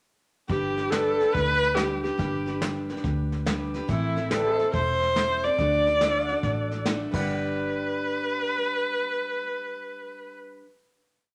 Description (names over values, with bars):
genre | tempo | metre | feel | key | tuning
honky-tonk and classic country | 142 BPM | 4/4 | swing 66% on 8ths | G major | A4 = 441 Hz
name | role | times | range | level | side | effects
clear viola | melody | 0.5-10.3 s | E4 to D5 | -28 LUFS | equal | none
picked steel-string acoustic guitar | accompaniment | 0.5-10.7 s | A2 to B4 | -35 LUFS | equal | none
vintage muted fingered electric bass | bass | 0.5-10.4 s | E1 to D2 | -34 LUFS | equal | none
soft brush drum kit | drums | 0.5-7.2 s | crash cymbal, hi-hat, kick drum, snare drum | -34 LUFS | equal | none
pedal steel guitar | sustained chords | 0.9-10.4 s | G4 to G5 | -38 LUFS | equal | none
room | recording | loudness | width
wet studio reverb, RT60 0.9 s | none | -26 LUFS | mono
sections
0.5-7.3 verse; 7.3-10.7 final hit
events
none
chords
0.5 G; 3.9 Am; 5.6 D; 7.1 G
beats
| 0.49 0.92 1.34 1.77 | 2.19 2.62 3.04 3.46 | 3.89 4.31 4.74 5.16 | 5.59 6.01 6.43 6.86 | 7.28 7.71 8.13 8.55 | 8.97 9.40 9.82 10.24